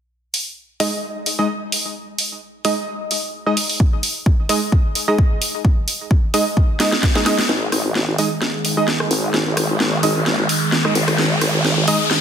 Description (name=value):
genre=bass house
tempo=130 BPM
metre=4/4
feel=swing 54% on 16ths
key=unclear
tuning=A4 = 444 Hz
part: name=garage drum kit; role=drums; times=0.3-12.2 s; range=hi-hat, rim click, snare drum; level=-20 LUFS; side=equal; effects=studio reverb
part: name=band-passed chord stab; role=stabs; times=0.8-12.0 s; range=G#3 to D#5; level=-22 LUFS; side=right 1 dB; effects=chorus, sidechain pumping, ping-pong delay
part: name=electronic kick drum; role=drums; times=3.8-7.1 s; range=none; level=-15 LUFS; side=equal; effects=overdrive, studio reverb
part: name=sweeping resonant pad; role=sustained chords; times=7.5-12.2 s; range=D#3 to G#4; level=-22 LUFS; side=right 2 dB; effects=chorus, sidechain pumping
part: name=vowel-sweep wobble bass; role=bass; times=7.5-11.9 s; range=G#1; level=-21 LUFS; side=left 1 dB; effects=chorus, tube saturation, sidechain pumping, high-pass filter
part: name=riser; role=sound effects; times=8.7-12.2 s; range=none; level=-23 LUFS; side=left 2 dB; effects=none
room=moderate lush hall reverb, RT60 2.3 s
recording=dense, heavily limited modern master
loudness=-16 LUFS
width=side -8 dB against mid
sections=0.1-7.5 A section; 7.5-12.2 B section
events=drum fill 6.8-7.5, 7.5-12.2; build-up 7.5-12.2; riser 8.7-12.2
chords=0.1 G#5